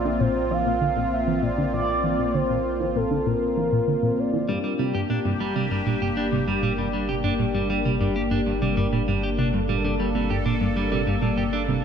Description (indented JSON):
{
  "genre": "ambient",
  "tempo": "98 BPM",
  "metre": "4/4",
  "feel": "straight",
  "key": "G dorian",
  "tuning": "A4 = 440 Hz",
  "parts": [
    { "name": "expressive synth lead", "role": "melody", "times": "0.0-4.8 s", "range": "A4 to F5", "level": "-26 LUFS", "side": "right 1 dB", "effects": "chorus, tape echo" },
    { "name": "sweeping resonant pad", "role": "sustained chords", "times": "0.0-11.8 s", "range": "Bb3 to A4", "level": "-26 LUFS", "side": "left 2 dB", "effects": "chorus" },
    { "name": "round analog bass", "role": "bass", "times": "0.0-11.8 s", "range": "G1 to Bb1", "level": "-32 LUFS", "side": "equal", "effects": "tube saturation" },
    { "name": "tight sequenced synth", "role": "riff", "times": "0.1-11.8 s", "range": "G2 to E3", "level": "-26 LUFS", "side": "right 1 dB", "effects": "chorus, tape echo" },
    { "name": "clean electric guitar", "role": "arpeggios", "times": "4.5-11.7 s", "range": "G2 to G4", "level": "-28 LUFS", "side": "right 1 dB", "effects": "auto-pan, tape echo" }
  ],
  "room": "wet concert hall reverb, RT60 2.2 s",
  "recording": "none",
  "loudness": "-21 LUFS",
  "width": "side -7 dB against mid",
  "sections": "0.0-11.8 A section",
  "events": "filter sweep on synth arpeggio sound 0.0-11.8",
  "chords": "0.0 Bbsus2; 4.5 Gm"
}